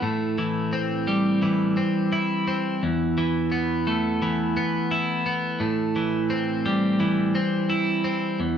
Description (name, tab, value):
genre	rock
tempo	86 BPM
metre	4/4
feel	straight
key	A minor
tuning	A4 = 440 Hz
part	twelve-string electric guitar	solo	0.0-8.6 s	E2 to E4	-22 LUFS	equal	none
room	wet studio reverb, RT60 0.9 s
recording	band playing live in one room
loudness	-22 LUFS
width	side -8 dB against mid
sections	0.0-8.4 A section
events	none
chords	0.0 Am7; 2.8 Esus4; 5.6 Am7